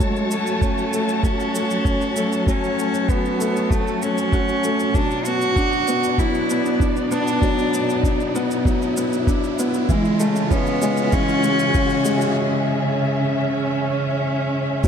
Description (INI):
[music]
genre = piano and strings electronica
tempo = 97 BPM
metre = 4/4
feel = straight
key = unclear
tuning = A4 = 440 Hz
[part]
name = rich cello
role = melody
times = 0.0-14.9 s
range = G#3 to F#4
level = -23 LUFS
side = equal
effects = none
[part]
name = dark symphonic string section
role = sustained chords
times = 0.0-14.9 s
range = B2 to A5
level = -25 LUFS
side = right 1 dB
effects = sidechain pumping
[part]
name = warm upright piano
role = riff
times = 0.0-14.9 s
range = E3 to F#4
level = -23 LUFS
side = left 2 dB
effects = ping-pong delay
[part]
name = electronic kick drum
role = drums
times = 0.0-14.9 s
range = none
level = -21 LUFS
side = equal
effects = none
[part]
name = shaker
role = drums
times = 0.0-14.9 s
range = none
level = -34 LUFS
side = right 4 dB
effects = none
[part]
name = riser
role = sound effects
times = 1.3-12.4 s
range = none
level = -30 LUFS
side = right 1 dB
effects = none
[part]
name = dark detuned saw bass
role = bass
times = 14.8-14.9 s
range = F#1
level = -23 LUFS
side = equal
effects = sidechain pumping
[sound]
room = moderate concert hall reverb, RT60 2.0 s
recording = none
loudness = -18 LUFS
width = side -7 dB against mid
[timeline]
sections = 0.0-14.8 A section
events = build-up 0.0-14.8; filter sweep on string section 0.0-14.8; riser 1.3-12.4; break 12.4-14.8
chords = 0.0 F#m; 4.9 Bm; 9.9 C#m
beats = | 0.00 0.62 1.24 1.86 | 2.48 3.09 3.71 4.33 | 4.95 5.57 6.19 6.80 | 7.42 8.04 8.66 9.28 | 9.90 10.52 11.13 11.75 | 12.37 12.99 13.61 14.23 | 14.85